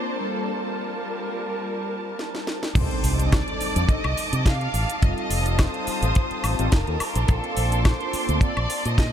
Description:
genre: nu-disco, nu disco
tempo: 106 BPM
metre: 4/4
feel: swing 54% on 16ths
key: C dorian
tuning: A4 = 440 Hz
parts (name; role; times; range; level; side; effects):
- dark studio violin section; melody; 0.0-9.1 s; A4 to F5; -31 LUFS; left 1 dB; ping-pong delay
- mellow synth brass; accompaniment; 0.0-8.5 s; G3 to Bb4; -31 LUFS; equal; chorus, phaser, sidechain pumping, ping-pong delay
- muted studio string section; sustained chords; 0.0-9.1 s; G3 to Eb6; -30 LUFS; right 2 dB; sidechain pumping
- house drum kit; drums; 2.2-9.1 s; crash cymbal, hi-hat, shaker, snare drum, woodblock; -30 LUFS; left 1 dB; overdrive
- fingered electric bass with an envelope filter; bass; 2.8-9.1 s; F1 to C3; -24 LUFS; equal; none
- kick drum; drums; 2.8-9.1 s; none; -19 LUFS; equal; none
- impact; sound effects; 2.8-5.0 s; none; -33 LUFS; equal; none
room: moderate huge ambient reverb, RT60 8.8 s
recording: dreamy mix soaked in reverb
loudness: -21 LUFS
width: side -10 dB against mid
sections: 0.0-2.8 A section; 2.8-9.1 B section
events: break 0.5-2.8; drum fill 2.2-2.8; drop 2.8-9.1; impact 2.8-5.0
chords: 0.2 Gm9; 2.8 Cm69; 5.0 F7; 7.0 Bbmaj9

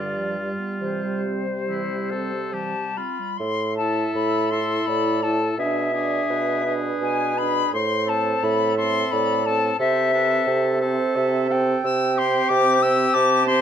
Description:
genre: classical, slow romantic movement for wind quintet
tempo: 68-94 BPM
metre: 3/4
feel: rubato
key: C major, A minor from 3.4 s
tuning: A4 = 439 Hz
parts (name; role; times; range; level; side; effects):
- silver concert flute; melody; 0.0-13.6 s; C5 to E6; -24 LUFS; left 5 dB; none
- warm oboe; second line; 0.0-13.6 s; E4 to A4; -29 LUFS; left 2 dB; none
- warm French horn; accompaniment; 0.0-13.6 s; G3 to E4; -29 LUFS; right 2 dB; none
- warm clarinet; accompaniment; 0.0-13.6 s; D3 to A5; -29 LUFS; right 10 dB; none
- mellow bassoon; bass; 0.0-13.6 s; G2 to C3; -24 LUFS; right 2 dB; none
room: light reverb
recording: dark, warm production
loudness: -20 LUFS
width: side -9 dB against mid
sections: 0.0-3.4 A section; 3.4-13.6 B section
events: none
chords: 0.0 G7; 0.8 C; 3.4 A5; 5.6 E7/B; 7.7 Am; 9.8 Am/C; 11.8 C5

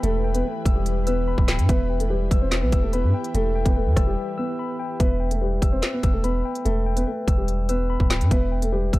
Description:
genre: hip hop, drill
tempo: 145 BPM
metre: 4/4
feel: half-time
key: E minor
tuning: A4 = 444 Hz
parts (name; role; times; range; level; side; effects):
- dark concert grand piano; melody; 0.0-9.0 s; G3 to C5; -27 LUFS; equal; low-pass filter
- mellow tine electric piano; accompaniment; 0.0-9.0 s; B4 to E6; -32 LUFS; left 4 dB; medium stereo tremolo, low-pass filter
- ethereal airy pad; sustained chords; 0.0-5.0 s; E3 to B4; -34 LUFS; left 3 dB; ensemble chorus, built-in reverb
- long sustained 808-style bass; bass; 0.0-9.0 s; D1 to G2; -23 LUFS; equal; none
- drill drum kit; drums; 0.0-9.0 s; handclaps, hi-hat, kick drum, rim click, snare drum; -21 LUFS; equal; overdrive
room: little or no reverb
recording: dark, warm production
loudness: -20 LUFS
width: side -18 dB against mid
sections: 0.0-5.0 A section; 5.0-9.0 A section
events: break 4.2-5.0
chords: 0.0 Em

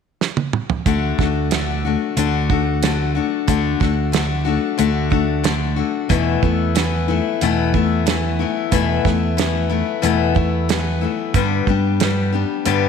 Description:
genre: folk rock and heartland rock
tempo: 92 BPM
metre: 4/4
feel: straight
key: D major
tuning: A4 = 440 Hz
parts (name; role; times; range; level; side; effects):
- damped 70s drum kit; drums; 0.2-12.8 s; hi-hat, kick drum, snare drum, toms; -21 LUFS; right 6 dB; none
- picked steel-string acoustic guitar; accompaniment; 0.9-12.9 s; E2 to G4; -19 LUFS; left 10 dB; none
- fingered electric bass; bass; 0.9-12.9 s; D2 to G2; -21 LUFS; right 2 dB; none
room: light reverb, small room reverb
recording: 1960s-style stereo with parts hard left and right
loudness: -16 LUFS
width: side -6 dB against mid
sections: 0.9-12.9 A section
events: drum fill 0.2-0.9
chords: 0.0 N.C.; 0.9 D; 6.1 Esus4; 11.3 G

